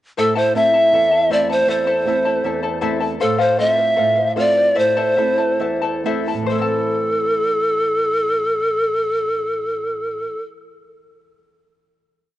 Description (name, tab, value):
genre	andean folk, Andean ensemble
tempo	64-79 BPM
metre	2/4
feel	straight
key	A minor pentatonic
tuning	A4 = 440 Hz
part	pan flute	melody	0.2-10.4 s	A4 to E5	-17 LUFS	equal	none
part	charango	accompaniment	0.2-10.6 s	E4 to A5	-23 LUFS	left 6 dB	cassette tape
part	nylon-string guitar	accompaniment	0.2-10.6 s	E2 to F4	-26 LUFS	right 6 dB	cassette tape
room	moderate lush hall reverb, RT60 2.6 s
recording	home recording on cassette, nothing above 10.5 kHz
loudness	-16 LUFS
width	side -14 dB against mid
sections	0.2-6.5 A section; 6.5-10.3 final chord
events	slowing down 3.2-6.5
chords	0.2 Am; 3.2 F/A; 4.8 Am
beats	| 0.17 0.93 | 1.68 2.44 | 3.20 3.97 | 4.76 5.60 | 6.50 7.44 | 8.39 9.33